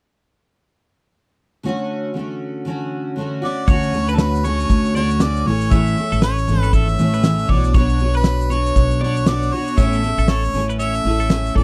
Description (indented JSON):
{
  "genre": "acoustic pop",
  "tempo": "118 BPM",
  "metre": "4/4",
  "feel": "swing 60% on 16ths",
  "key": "unclear",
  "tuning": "A4 = 438 Hz",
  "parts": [
    { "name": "picked steel-string acoustic guitar", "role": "accompaniment", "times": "1.6-11.6 s", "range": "A2 to C#5", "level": "-24 LUFS", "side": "equal", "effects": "double-tracked" },
    { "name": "clear harmonica", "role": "melody", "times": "3.4-11.6 s", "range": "A4 to E5", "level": "-26 LUFS", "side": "equal", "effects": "none" },
    { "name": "twelve-string electric guitar", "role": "arpeggios", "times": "3.7-11.6 s", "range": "A4 to D5", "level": "-32 LUFS", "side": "equal", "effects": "harmonic tremolo" },
    { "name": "upright bass", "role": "bass", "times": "3.7-11.6 s", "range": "G#1 to D2", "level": "-22 LUFS", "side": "equal", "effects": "none" },
    { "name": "natural country drum kit", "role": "drums", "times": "3.7-11.6 s", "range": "kick drum, shaker, snare drum", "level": "-20 LUFS", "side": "equal", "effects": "none" }
  ],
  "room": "little or no reverb",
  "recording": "dry, close 1970s-style studio recording",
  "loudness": "-18 LUFS",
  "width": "mono",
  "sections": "1.6-3.7 A section; 3.7-11.6 B section",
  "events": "none",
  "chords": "1.6 Dmaj7; 5.5 A; 7.5 Bmadd9; 9.8 A",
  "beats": "| 1.64 2.15 2.66 3.17 | 3.68 4.19 4.70 5.20 | 5.71 6.22 6.73 7.24 | 7.74 8.25 8.76 9.27 | 9.78 10.29 10.79 11.30"
}